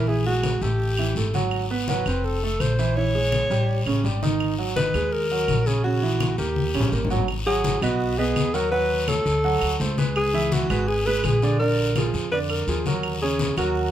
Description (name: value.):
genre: Afro-Cuban jazz.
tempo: 167 BPM.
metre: 4/4.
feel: straight.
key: G# minor.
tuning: A4 = 439 Hz.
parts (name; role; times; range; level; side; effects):
mellow alto saxophone; melody; 0.0-13.9 s; F#4 to C#5; -25 LUFS; equal; none.
warm grand piano; accompaniment; 0.0-13.9 s; C#3 to F#5; -26 LUFS; right 4 dB; none.
upright bass; bass; 0.0-13.9 s; E#1 to E#2; -26 LUFS; left 1 dB; none.
congas; percussion; 0.1-13.9 s; none; -30 LUFS; left 4 dB; none.
guiro; percussion; 0.1-13.9 s; none; -33 LUFS; left 4 dB; none.
claves; percussion; 0.4-13.8 s; none; -34 LUFS; right 4 dB; none.
room: little or no reverb.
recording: none.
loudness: -20 LUFS.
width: side -11 dB against mid.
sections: 0.0-7.3 A section; 7.3-13.9 B section.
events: drum fill 6.6-7.3.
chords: 0.1 F#m9; 0.8 A5; 1.5 G#m7; 2.2 F; 3.0 A#m7b5; 3.7 A7#11; 4.4 G#m7; 5.8 A#dim; 6.6 D#7; 7.3 G#m7; 8.7 D#m7b5; 9.4 D7#11; 10.2 C#m7; 11.6 A#7; 13.0 D#m7.